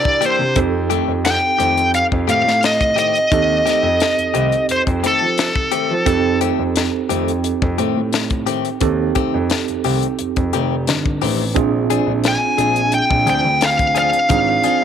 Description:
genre	straight-eighth soul blues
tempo	87 BPM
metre	4/4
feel	straight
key	F mixolydian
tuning	A4 = 440 Hz
part	smooth overdriven lead guitar	melody	0.0-6.4, 12.3-14.8 s	A4 to Ab5	-16 LUFS	left 1 dB	none
part	tine electric piano	accompaniment	0.0-14.8 s	C4 to Bb4	-22 LUFS	right 12 dB	medium stereo tremolo
part	mellow horn section	sustained chords	0.0-0.6 s	D4 to D5	-34 LUFS	right 1 dB	none
part	tight funk drum kit	drums	0.1-14.8 s	hi-hat, kick drum, snare drum	-22 LUFS	left 3 dB	none
part	direct-recorded clean electric guitar	stabs	0.2-14.8 s	Eb3 to Ab4	-24 LUFS	left 13 dB	none
part	dark concert grand piano	bass	0.4-14.6 s	F1 to F3	-22 LUFS	equal	none
room	moderate spring reverb, RT60 1.9 s, small room ambience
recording	1960s-style stereo with parts hard left and right, faint mains hum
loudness	-14 LUFS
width	side -8 dB against mid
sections	0.6-14.8 A section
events	none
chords	0.0 C9; 0.6 F9; 11.6 Bb9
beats	| 0.56 1.25 1.94 2.62 | 3.31 4.00 4.69 5.38 | 6.07 6.75 7.44 8.13 | 8.82 9.50 10.19 10.88 | 11.56 12.25 12.94 13.62 | 14.31

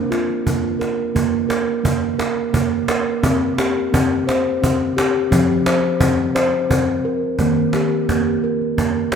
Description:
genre	world meditative, meditative tuned percussion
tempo	86 BPM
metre	3/4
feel	straight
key	unclear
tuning	A4 = 440 Hz
part	steel tongue drum	arpeggios	0.0-9.2 s	Eb3 to C5	-18 LUFS	equal	ping-pong delay
part	cajon	percussion	0.1-9.2 s	none	-21 LUFS	right 1 dB	none
room	wet concert hall reverb, RT60 1.8 s, small room ambience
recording	none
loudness	-16 LUFS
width	side -7 dB against mid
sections	0.0-1.2 A section; 1.2-9.2 B section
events	none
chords	0.0 Bb5; 1.2 N.C.; 3.2 C5; 5.3 F5; 7.4 Eb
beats	0.46 | 1.15 1.85 2.54 | 3.24 3.93 4.62 | 5.32 6.01 6.70 | 7.40 8.09 8.78

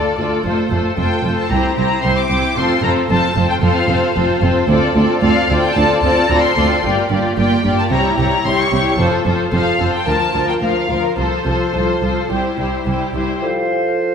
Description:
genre	classical, dramatic, fast romantic movement for symphony orchestra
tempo	112 BPM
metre	4/4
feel	straight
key	F major from 4.7 s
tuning	A4 = 440 Hz
part	rich symphonic violin section	melody	0.0-12.8 s	Bb4 to D6	-20 LUFS	left 3 dB	none
part	warm studio violin section	second line	0.0-13.4 s	G4 to D5	-20 LUFS	left 2 dB	none
part	warm symphonic viola section	accompaniment	0.0-13.4 s	F3 to F4	-20 LUFS	equal	none
part	dark chamber double bass section	bass	0.2-13.2 s	F1 to D2	-22 LUFS	right 3 dB	none
part	warm symphonic cello section	bass	0.2-13.2 s	C2 to C3	-21 LUFS	right 2 dB	none
part	clear oboe	second line	13.4-14.1 s	C5	-25 LUFS	right 3 dB	none
part	mellow clarinet	second line	13.4-14.1 s	A4	-24 LUFS	right 1 dB	none
part	mellow flute section	second line	13.4-14.1 s	F5	-23 LUFS	left 4 dB	none
part	dark bassoon	accompaniment	13.4-14.1 s	F3	-19 LUFS	right 2 dB	none
room	wet scoring stage reverb, RT60 1.9 s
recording	minimal, uncompressed stereo recording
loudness	-14 LUFS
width	side -7 dB against mid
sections	0.0-13.4 A section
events	none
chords	0.4 F; 1.5 C; 2.6 F; 4.7 Dm7; 6.8 Gm7; 7.9 C; 9.0 F; 10.1 Bb/D; 11.2 F/C; 12.3 C; 13.4 F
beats	| 0.45 0.98 1.51 2.04 | 2.57 3.10 3.63 4.16 | 4.69 5.22 5.76 6.30 | 6.84 7.38 7.91 8.45 | 8.99 9.53 10.07 10.61 | 11.18 11.74 12.31 12.87 | 13.42 13.95

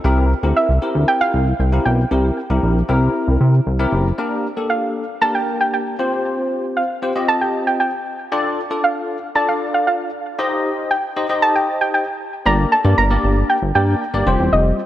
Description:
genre	dance-pop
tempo	116 BPM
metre	4/4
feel	straight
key	G minor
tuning	A4 = 440 Hz
part	bell-like tine electric piano	accompaniment	0.0-14.8 s	G3 to Eb5	-21 LUFS	left 2 dB	ensemble chorus
part	chorused synth bass	bass	0.0-4.1, 12.5-14.7 s	E1 to C3	-16 LUFS	equal	none
part	soft round pluck	melody	0.6-14.9 s	Eb5 to Bb5	-19 LUFS	right 2 dB	chorus, digital delay
room	moderate lush hall reverb, RT60 3.0 s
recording	worn, warbling old tape, cassette tape, warbly pitch drift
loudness	-16 LUFS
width	side -13 dB against mid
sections	0.0-4.2 A section; 4.2-12.5 B section; 12.5-14.9 C section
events	build-up 4.2-12.5; drop 12.5-14.9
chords	0.0 C7; 4.2 Gm; 6.0 Fsus2; 8.3 Dm; 10.4 Cm; 12.5 Gm; 14.3 Fsus2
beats	| 0.04 0.56 1.08 1.60 | 2.11 2.63 3.15 3.67 | 4.18 4.70 5.22 5.73 | 6.25 6.77 7.29 7.80 | 8.32 8.84 9.36 9.87 | 10.39 10.91 11.42 11.94 | 12.46 12.98 13.49 14.01 | 14.53

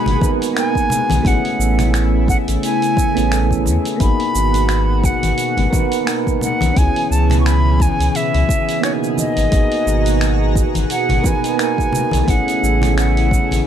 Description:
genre	sunset chillout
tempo	87 BPM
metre	4/4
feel	swing 57% on 16ths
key	unclear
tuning	A4 = 439 Hz
part	silver concert flute	melody	0.0-13.6 s	C#5 to C#6	-21 LUFS	equal	tape echo
part	soft electric-piano-like synth keys	accompaniment	0.0-13.7 s	A3 to B4	-21 LUFS	moving between left 5 dB and right 10 dB	chorus, tremolo, auto-pan
part	airy breathy pad	sustained chords	0.0-13.7 s	B2 to A#5	-23 LUFS	equal	chorus
part	warm sub bass	bass	0.1-13.6 s	G#1 to E2	-17 LUFS	equal	tube saturation
part	dusty soul sampler-style drum kit	drums	0.1-13.6 s	finger snaps, hi-hat, shaker	-26 LUFS	right 2 dB	none
part	congas	percussion	0.1-13.6 s	none	-24 LUFS	left 3 dB	none
part	electronic kick drum	drums	0.2-13.5 s	none	-18 LUFS	equal	overdrive
room	light reverb, digital ambience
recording	dark, warm production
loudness	-14 LUFS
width	side -9 dB against mid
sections	0.0-13.7 A section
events	none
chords	0.0 G#m9; 1.2 Amaj7; 4.0 G#m9; 6.8 C#m7; 9.2 G#m9; 12.3 Amaj7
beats	0.56 | 1.25 1.94 2.63 3.32 | 4.01 4.70 5.39 6.08 | 6.77 7.46 8.14 8.84 | 9.52 10.21 10.90 11.59 | 12.28 12.97 13.66

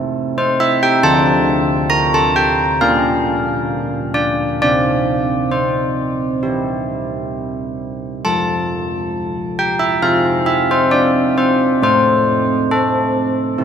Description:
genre	classical, tune for church bells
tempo	67 BPM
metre	4/4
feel	straight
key	F major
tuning	A4 = 440 Hz
part	carillon bells	solo	0.0-13.6 s	D3 to Bb5	-14 LUFS	equal	none
room	wet cathedral reverb, RT60 4.6 s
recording	none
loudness	-14 LUFS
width	side -8 dB against mid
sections	0.0-13.6 A section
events	none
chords	0.0 Am; 1.0 Dm; 2.8 Gm7/Bb; 4.6 C; 8.2 F; 11.8 Am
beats	0.16 | 1.04 1.91 2.79 3.69 | 4.60 5.51 6.42 7.34 | 8.24 9.14 10.04 10.94 | 11.84 12.73 13.61

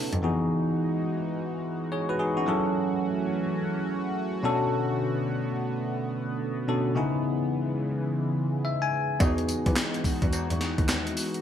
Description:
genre	R&B, new jack swing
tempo	107 BPM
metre	4/4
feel	swing 63% on 16ths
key	E major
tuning	A4 = 442 Hz
part	bell-like tine electric piano	accompaniment	0.0-11.4 s	B2 to G#5	-27 LUFS	left 1 dB	wide subtle chorus
part	chorused pulse-width pad	sustained chords	0.0-11.4 s	C#3 to F#4	-32 LUFS	right 1 dB	phaser
part	warm cello	bass	0.1-0.2, 9.2-10.9 s	D#2 to E3	-31 LUFS	equal	none
part	gated 80s digital drum machine	drums	0.1-0.2, 9.2-11.4 s	handclaps, hi-hat, kick drum, snare drum, tambourine	-27 LUFS	equal	gated reverb, gated reverb snare
part	cowbell	percussion	9.2-11.1 s	none	-41 LUFS	right 4 dB	none
room	light reverb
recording	bright 1980s-style digital production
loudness	-25 LUFS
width	side -9 dB against mid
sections	0.2-11.4 A section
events	break 0.0; tine electric piano fill 8.4-9.2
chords	0.2 Emaj9; 2.5 F#m7; 4.4 Bm7; 7.0 C#m7; 9.2 Emaj9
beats	| 0.23 0.79 1.35 1.92 | 2.48 3.04 3.60 4.16 | 4.72 5.28 5.84 6.40 | 6.96 7.52 8.08 8.64 | 9.21 9.77 10.33 10.89

